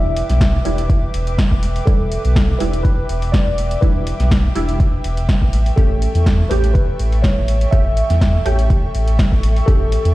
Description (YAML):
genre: deep house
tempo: 123 BPM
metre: 4/4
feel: swing 53% on 16ths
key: E dorian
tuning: A4 = 440 Hz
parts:
  - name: mellow tine electric piano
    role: melody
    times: 0.0-10.1 s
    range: A4 to E5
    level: -25 LUFS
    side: equal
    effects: medium stereo tremolo, analog delay
  - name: airy breathy pad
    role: sustained chords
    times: 0.0-10.1 s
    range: A4 to D6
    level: -29 LUFS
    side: equal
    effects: chorus, sidechain pumping
  - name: filtered dub chord stab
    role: stabs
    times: 0.0-10.1 s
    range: G3 to G4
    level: -26 LUFS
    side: right 2 dB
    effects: phaser, lush chorus, sidechain pumping, tape echo
  - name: sub bass with octave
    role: bass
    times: 0.0-10.1 s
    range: E1 to E2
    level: -17 LUFS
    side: equal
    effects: tube saturation, sidechain pumping
  - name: deep house drum kit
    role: drums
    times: 0.2-10.1 s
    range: hi-hat, snare drum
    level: -25 LUFS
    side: equal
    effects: overdrive
  - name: electronic kick drum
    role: drums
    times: 0.4-9.8 s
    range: none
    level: -15 LUFS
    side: equal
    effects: overdrive
room: little or no reverb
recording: played on a big sound system in a bare room, stone room reverb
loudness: -14 LUFS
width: side -18 dB against mid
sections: 0.0-10.1 A section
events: none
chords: 0.0 Em7; 5.5 A7